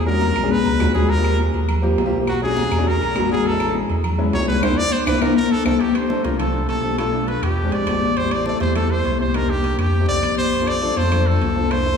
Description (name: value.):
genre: Afro-Cuban jazz.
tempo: 204 BPM.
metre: 4/4.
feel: straight.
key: unclear.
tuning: A4 = 440 Hz.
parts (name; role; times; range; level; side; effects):
bright trumpet; melody; 0.0-12.0 s; F#4 to D5; -23 LUFS; equal; none.
warm sub bass; bass; 0.0-12.0 s; A1 to F2; -22 LUFS; equal; none.
warm grand piano; accompaniment; 0.1-12.0 s; G#3 to A4; -22 LUFS; left 1 dB; none.
congas; percussion; 0.1-12.0 s; none; -25 LUFS; left 5 dB; none.
timbales and agogo bells; percussion; 0.2-11.9 s; none; -29 LUFS; right 4 dB; none.
claves; percussion; 0.4-11.9 s; none; -36 LUFS; left 3 dB; none.
room: wet church reverb, RT60 2.9 s.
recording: recorded in a church or concert hall, small room ambience.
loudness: -17 LUFS.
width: side -6 dB against mid.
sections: 0.0-5.8 A section; 5.8-12.0 B section.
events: trumpet solo 0.0-5.8; drum fill 0.4-1.1, 5.1-5.8; band accent 4.6-5.8.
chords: 0.0 E13; 1.1 Eb6; 2.3 Bm7; 2.9 E7; 3.5 Amaj7; 4.6 C7; 5.8 F69; 7.0 Bm7b5; 7.6 E7alt; 8.2 Am7; 9.3 Cm7; 9.9 F9; 10.5 Bbmaj7.